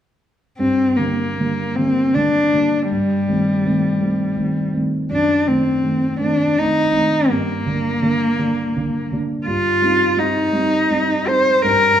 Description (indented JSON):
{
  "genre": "classical, romantic duo for cello and grand piano",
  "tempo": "50-57 BPM (dotted quarters)",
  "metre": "6/8",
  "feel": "rubato",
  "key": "G minor",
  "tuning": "A4 = 440 Hz",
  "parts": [
    { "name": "warm cello", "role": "melody", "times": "0.6-12.0 s", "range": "G3 to C5", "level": "-17 LUFS", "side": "left 1 dB", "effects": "none" },
    { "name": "dark concert grand piano", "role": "accompaniment", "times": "0.6-12.0 s", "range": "F#2 to Eb4", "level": "-21 LUFS", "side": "right 2 dB", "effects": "none" }
  ],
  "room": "moderate recital hall reverb, RT60 1.4 s",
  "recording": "dark, warm production",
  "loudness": "-16 LUFS",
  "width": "side -10 dB against mid",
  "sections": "0.6-12.0 A section",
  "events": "none",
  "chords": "0.6 Gm; 2.9 Am7b5/G; 5.1 F#dim7; 7.3 Gm; 9.5 Cm/G"
}